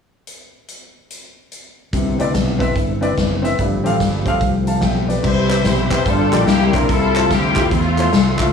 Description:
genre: uptempo gospel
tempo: 145 BPM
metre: 4/4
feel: swing 63% on 8ths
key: C major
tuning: A4 = 440 Hz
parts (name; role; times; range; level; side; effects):
- swinging big-band drum kit; drums; 0.3-8.5 s; crash cymbal, hi-hat, kick drum, snare drum; -21 LUFS; left 1 dB; none
- warm upright piano; accompaniment; 1.9-8.5 s; G2 to A5; -20 LUFS; left 2 dB; slapback echo
- tonewheel organ; sustained chords; 1.9-8.5 s; D3 to C6; -25 LUFS; right 4 dB; slow rotary speaker, chorus vibrato
- fingered electric bass; bass; 1.9-8.5 s; F#1 to E2; -20 LUFS; left 1 dB; none
- muted studio string section; melody; 5.3-8.5 s; A3 to C5; -19 LUFS; left 1 dB; slapback echo
- group handclap; percussion; 5.5-8.5 s; none; -27 LUFS; right 5 dB; slapback echo
room: light reverb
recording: live gig heard through the venue's PA, club reverb, small room ambience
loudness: -14 LUFS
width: side -6 dB against mid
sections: 0.3-1.9 A section; 1.9-5.2 B section; 5.2-8.5 C section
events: none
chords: 0.3 N.C.; 1.9 Cmaj9; 3.6 G9sus4; 5.2 Cmaj7; 6.1 Gm7; 6.5 C9; 6.9 Fmaj7/C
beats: | 0.27 0.69 1.10 1.51 | 1.93 2.34 2.76 3.17 | 3.59 4.00 4.41 4.83 | 5.24 5.66 6.07 6.48 | 6.89 7.31 7.72 8.13

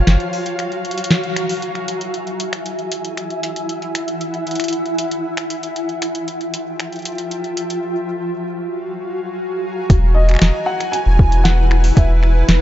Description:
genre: IDM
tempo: 116 BPM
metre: 4/4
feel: straight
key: E lydian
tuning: A4 = 442 Hz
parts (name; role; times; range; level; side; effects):
- felt-muted upright piano; melody; 0.0-1.3, 10.1-12.4 s; C#5 to G#5; -24 LUFS; equal; vintage 12-bit sampler grit, digital delay
- granular cloud pad; sustained chords; 0.0-12.6 s; E4 to A#5; -23 LUFS; equal; built-in reverb
- flickering grainy texture; texture; 0.0-7.8 s; E5 to F5; -30 LUFS; left 2 dB; built-in reverb, sidechain pumping
- warm sub bass; bass; 0.1-0.2, 9.9-12.6 s; E1 to F#1; -13 LUFS; equal; none
- booming analog drum machine; drums; 0.1-12.6 s; finger snaps, hi-hat, snare drum; -20 LUFS; equal; overdrive
- electronic kick drum; drums; 9.9-12.1 s; none; -12 LUFS; equal; none
room: light reverb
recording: dark, warm production, nothing above 7.8 kHz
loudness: -17 LUFS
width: side -12 dB against mid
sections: 0.0-1.6 A section; 1.6-9.9 B section; 9.9-12.6 C section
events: break 0.6-1.6; band accent 1.1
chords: 0.0 F#maj9; 1.6 Eadd9; 5.8 Fmaj9; 7.8 F#maj9; 9.9 Eadd9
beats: 0.07 0.59 1.11 | 1.62 2.14 2.66 3.17 | 3.69 4.21 4.73 5.24 | 5.76 6.28 6.80 7.31 | 7.83 8.35 8.87 9.38 | 9.90 10.42 10.93 11.45 | 11.97 12.48

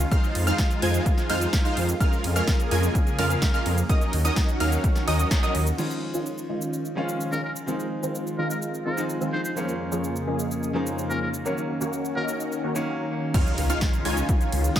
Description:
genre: EDM, festival progressive house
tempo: 127 BPM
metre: 4/4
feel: straight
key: unclear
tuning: A4 = 440 Hz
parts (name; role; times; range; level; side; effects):
- lush unison pad; sustained chords; 0.0-14.8 s; F2 to Ab4; -31 LUFS; equal; chorus, phaser, sidechain pumping
- wide detuned saw bass; bass; 0.0-5.7, 13.6-14.7 s; Db2 to F2; -24 LUFS; equal; chorus, sidechain pumping
- big-room dance drum kit; drums; 0.0-14.8 s; crash cymbal, hi-hat, ride cymbal, shaker, snare drum; -32 LUFS; right 1 dB; none
- wide unison pluck; arpeggios; 0.1-5.7, 13.3-14.8 s; Eb6 to Ab6; -32 LUFS; right 1 dB; sidechain pumping, tape echo
- supersaw stab; riff; 0.1-14.8 s; Eb3 to Ab5; -29 LUFS; equal; ensemble chorus, sidechain pumping, low-pass filter, tape echo
- electronic kick drum; drums; 0.1-5.4, 13.3-14.8 s; none; -22 LUFS; equal; none
- bright baby grand piano; accompaniment; 5.8-13.4 s; Eb3 to F4; -32 LUFS; left 1 dB; sidechain pumping, tape echo
- trumpet with metal mute; melody; 7.3-12.4 s; Bb4 to C5; -34 LUFS; left 1 dB; tape echo
- impact; sound effects; 13.3-14.8 s; none; -33 LUFS; equal; none
room: moderate plate reverb, RT60 1.4 s, digital ambience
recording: dreamy mix soaked in reverb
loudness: -22 LUFS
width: side -11 dB against mid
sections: 0.0-5.8 A section; 5.8-13.3 B section; 13.3-14.8 A section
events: drop 0.0-5.8, 13.3-14.8; band accent 5.3; filter sweep on analog synth pad 5.8-13.3; impact 13.3-14.8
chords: 0.1 Fm7; 2.0 Bbm7/F; 3.9 Ebm7; 5.8 Dbadd9; 7.7 Fm7; 9.6 Bbm7/F; 11.5 Ebm7; 13.3 Dbadd9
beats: | 0.12 0.59 1.06 1.53 | 2.00 2.48 2.95 3.42 | 3.90 4.37 4.84 5.31 | 5.78 6.26 6.73 7.20 | 7.67 8.15 8.62 9.09 | 9.56 10.04 10.51 10.98 | 11.45 11.93 12.40 12.87 | 13.34 13.82 14.29 14.76

